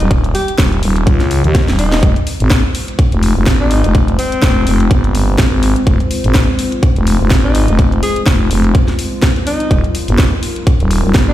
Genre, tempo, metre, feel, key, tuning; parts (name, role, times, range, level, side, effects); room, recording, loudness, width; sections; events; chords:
bass house; 125 BPM; 4/4; swing 56% on 16ths; F minor; A4 = 435 Hz
warm alto saxophone; melody; 0.0-11.3 s; C4 to Ab4; -21 LUFS; left 1 dB; tape echo
growling FM bass; bass; 0.0-11.3 s; Eb1 to Eb2; -13 LUFS; equal; overdrive, sidechain pumping
garage drum kit; drums; 0.0-11.3 s; hi-hat, snare drum; -20 LUFS; equal
electronic kick drum; drums; 0.1-11.3 s; -12 LUFS; equal
dark analog pad; sustained chords; 2.3-11.3 s; G3 to C5; -22 LUFS; equal; chorus, sidechain pumping
little or no reverb; played on a big sound system in a bare room, large studio reverb; -10 LUFS; side -13 dB against mid
0.0-11.3 A section
drum fill 1.5-2.0
0.0 N.C.; 2.0 Fm; 9.7 Ebadd9